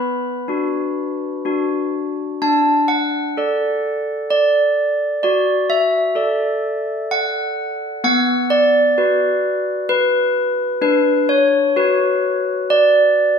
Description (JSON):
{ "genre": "classical, tune for handbells", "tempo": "64 BPM", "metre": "3/4", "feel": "straight", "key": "D major", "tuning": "A4 = 440 Hz", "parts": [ { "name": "handbells", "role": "solo", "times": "0.0-13.4 s", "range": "B3 to B5", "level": "-15 LUFS", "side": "equal", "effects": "none" } ], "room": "wet stone room reverb, RT60 1.3 s", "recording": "heard from further back in the room", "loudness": "-15 LUFS", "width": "side -6 dB against mid", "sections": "0.0-2.4 A section; 2.4-13.4 B section", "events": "none", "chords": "0.0 Bm; 2.4 D; 5.2 D/F#; 8.0 Bm; 10.8 Bm/D" }